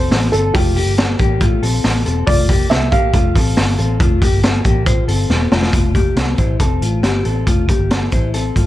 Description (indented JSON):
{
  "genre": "jangly indie pop",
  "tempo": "139 BPM",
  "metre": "4/4",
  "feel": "straight",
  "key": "F major",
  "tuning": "A4 = 436 Hz",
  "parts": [
    { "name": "dark upright piano", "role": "melody", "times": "0.0-5.3 s", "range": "G4 to F5", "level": "-21 LUFS", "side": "right 2 dB", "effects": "analog delay" },
    { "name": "mellow electric guitar", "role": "arpeggios", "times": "0.0-8.7 s", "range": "A3 to C5", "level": "-20 LUFS", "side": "left 5 dB", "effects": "spring reverb" },
    { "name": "vintage muted fingered electric bass", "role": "bass", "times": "0.0-8.7 s", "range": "E1 to C2", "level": "-18 LUFS", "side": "equal", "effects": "none" },
    { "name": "raw garage drum kit", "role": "drums", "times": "0.1-8.7 s", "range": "hi-hat, kick drum, snare drum", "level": "-16 LUFS", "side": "equal", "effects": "none" }
  ],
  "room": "small room ambience",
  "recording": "dark, warm production",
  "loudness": "-13 LUFS",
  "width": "side -14 dB against mid",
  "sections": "0.0-5.7 A section; 5.7-8.7 B section",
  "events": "drum fill 5.3-5.7",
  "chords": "0.0 Fadd9"
}